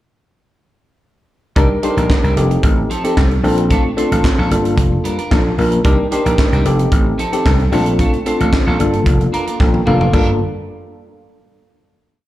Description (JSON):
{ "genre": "early-eighties boogie funk", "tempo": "112 BPM", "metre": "4/4", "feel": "straight", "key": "G minor", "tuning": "A4 = 443 Hz", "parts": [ { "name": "mellow tine electric piano", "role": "accompaniment", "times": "1.6-10.4 s", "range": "Bb3 to Bb5", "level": "-17 LUFS", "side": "left 1 dB", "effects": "medium stereo tremolo, slapback echo" }, { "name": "clean electric guitar", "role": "riff", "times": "1.6-10.3 s", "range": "F3 to C5", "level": "-24 LUFS", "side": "right 3 dB", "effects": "analog chorus, slapback echo" }, { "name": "vintage slap bass", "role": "bass", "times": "1.6-10.4 s", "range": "F1 to C2", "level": "-16 LUFS", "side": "equal", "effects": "none" }, { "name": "tight funk drum kit", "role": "drums", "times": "1.6-10.3 s", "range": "crash cymbal, handclaps, hi-hat, kick drum, snare drum, toms", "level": "-18 LUFS", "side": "equal", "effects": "none" } ], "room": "light reverb, small room reverb", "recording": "live gig heard through the venue's PA, club ambience", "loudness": "-12 LUFS", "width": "side -14 dB against mid", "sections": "1.6-10.1 verse; 10.1-12.3 final chord", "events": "tine electric piano fill 9.1-10.1; drum fill 9.6-10.1", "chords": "1.6 Cm7; 2.4 F7; 3.4 Bbmaj7; 4.5 Gm7; 5.8 Cm7; 6.7 F7; 7.7 Bbmaj7; 8.8 Gm7" }